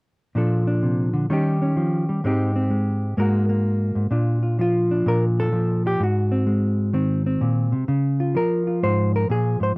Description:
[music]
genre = solo jazz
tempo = 128 BPM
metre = 4/4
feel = swing 66% on 8ths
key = unclear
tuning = A4 = 439 Hz
[part]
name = hollow-body jazz guitar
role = solo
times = 0.3-9.8 s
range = Ab2 to C5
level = -19 LUFS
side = equal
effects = none
[sound]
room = light reverb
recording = dry, close 1970s-style studio recording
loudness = -19 LUFS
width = side -31 dB against mid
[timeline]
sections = 0.3-4.1 A section; 4.1-9.8 B section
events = none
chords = 0.3 Bbmaj7; 1.3 Eb7; 2.2 Abmaj7; 3.2 Absus2; 4.1 Bbmaj7; 6.0 Ab7; 7.9 Db

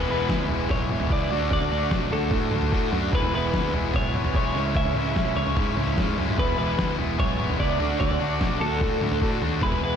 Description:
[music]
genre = indie rock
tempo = 148 BPM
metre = 4/4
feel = straight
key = unclear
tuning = A4 = 441 Hz
[part]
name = twelve-string electric guitar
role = melody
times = 0.0-10.0 s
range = A4 to E5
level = -28 LUFS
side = equal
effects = vibrato effect, tape echo
[part]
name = crunchy overdriven guitar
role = riff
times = 0.0-10.0 s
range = C#3 to F#4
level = -31 LUFS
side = right 8 dB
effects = ensemble chorus, tape echo
[part]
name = distorted electric guitar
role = riff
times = 0.0-10.0 s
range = C#3 to F#4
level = -29 LUFS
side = left 9 dB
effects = overdrive
[part]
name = fuzz picked electric bass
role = bass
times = 0.0-10.0 s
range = E1 to A2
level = -29 LUFS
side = equal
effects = overdrive
[part]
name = lo-fi sampler-style drum kit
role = drums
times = 0.3-9.8 s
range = kick drum, snare drum, toms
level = -26 LUFS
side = equal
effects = none
[sound]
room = moderate plate reverb, RT60 1.6 s, digital ambience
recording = dreamy mix soaked in reverb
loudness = -22 LUFS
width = side -8 dB against mid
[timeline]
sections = 0.0-10.0 A section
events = none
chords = 0.0 E; 1.3 D; 3.1 E; 4.6 C#m; 6.4 E; 7.8 D

